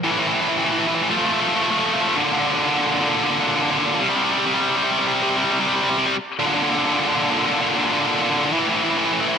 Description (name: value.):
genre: metal.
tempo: 113 BPM.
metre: 4/4.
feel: straight.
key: unclear.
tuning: A4 = 440 Hz.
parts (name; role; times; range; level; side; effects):
tight distorted guitar; solo; 0.0-9.4 s; A2 to A3; -17 LUFS; equal; distortion.
room: moderate lush hall reverb, RT60 2.7 s.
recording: rough home demo mix.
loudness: -17 LUFS.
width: side -7 dB against mid.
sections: 0.0-9.4 A section.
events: half time 0.0-9.4.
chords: 0.0 A5; 1.1 F; 2.2 Bb; 4.0 C5; 6.4 Bb; 8.5 A5.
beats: | 0.04 0.57 1.10 1.63 | 2.16 2.69 3.22 3.75 | 4.28 4.81 5.34 5.87 | 6.40 6.93 7.46 8.00 | 8.53 9.06.